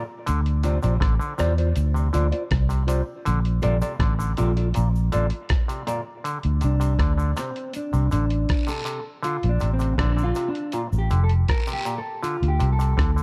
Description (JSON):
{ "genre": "roots reggae", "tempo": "80 BPM", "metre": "4/4", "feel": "straight", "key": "D minor", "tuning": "A4 = 440 Hz", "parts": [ { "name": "mellow electric guitar", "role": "accompaniment", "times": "0.0-13.2 s", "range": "C4 to D5", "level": "-32 LUFS", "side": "equal", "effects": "phaser, tape echo" }, { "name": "clav", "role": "arpeggios", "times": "0.0-13.2 s", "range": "Bb2 to D3", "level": "-34 LUFS", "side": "equal", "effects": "none" }, { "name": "vintage muted fingered electric bass", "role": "bass", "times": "0.3-13.2 s", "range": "F1 to E2", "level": "-23 LUFS", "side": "equal", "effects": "none" }, { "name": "dusty soul sampler-style drum kit", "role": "drums", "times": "0.3-13.2 s", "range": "hi-hat, kick drum, rim click", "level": "-28 LUFS", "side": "equal", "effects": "none" }, { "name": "cabasa and guiro", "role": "percussion", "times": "0.3-13.2 s", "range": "none", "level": "-43 LUFS", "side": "equal", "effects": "none" } ], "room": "little or no reverb", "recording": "dark, warm production", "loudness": "-23 LUFS", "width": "mono", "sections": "0.0-6.2 A section; 6.2-13.2 B section", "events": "clean electric guitar solo 6.2-13.2", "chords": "0.3 Dm7; 3.3 Bbmaj7; 6.2 D5; 9.2 Bbmaj7; 12.2 D5", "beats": "| 0.27 1.02 1.77 2.51 | 3.26 4.01 4.75 5.50 | 6.25 7.00 7.75 8.49 | 9.24 9.99 10.73 11.48 | 12.23 12.98" }